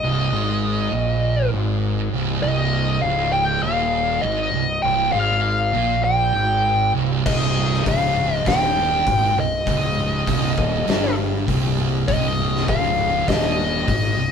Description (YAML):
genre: stoner and doom metal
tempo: 100 BPM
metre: 4/4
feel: straight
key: C minor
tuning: A4 = 440 Hz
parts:
  - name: fuzz lead guitar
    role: melody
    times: 0.0-14.3 s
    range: Eb5 to G5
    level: -21 LUFS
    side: left 2 dB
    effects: wah, distortion
  - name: thick fuzz guitar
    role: riff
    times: 0.0-14.3 s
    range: C2 to Bb2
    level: -28 LUFS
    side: left 6 dB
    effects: distortion
  - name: thick fuzz guitar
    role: riff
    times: 0.0-14.3 s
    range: C2 to Bb2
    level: -23 LUFS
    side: right 7 dB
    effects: distortion
  - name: fuzz fingered electric bass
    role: bass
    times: 0.0-14.3 s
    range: C1 to Bb1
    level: -27 LUFS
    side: left 1 dB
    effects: overdrive, tube saturation
  - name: oversized low-tuned drum kit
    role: drums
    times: 7.3-14.0 s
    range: crash cymbal, hi-hat, kick drum, snare drum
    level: -23 LUFS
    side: left 1 dB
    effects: none
room: light reverb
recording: band playing live in one room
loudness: -18 LUFS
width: side -7 dB against mid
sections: 0.0-14.3 A section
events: none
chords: 0.0 Cm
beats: | 0.03 0.63 1.23 1.83 | 2.44 3.04 3.64 4.24 | 4.85 5.45 6.05 6.66 | 7.26 7.86 8.47 9.07 | 9.67 10.27 10.88 11.48 | 12.08 12.68 13.28 13.88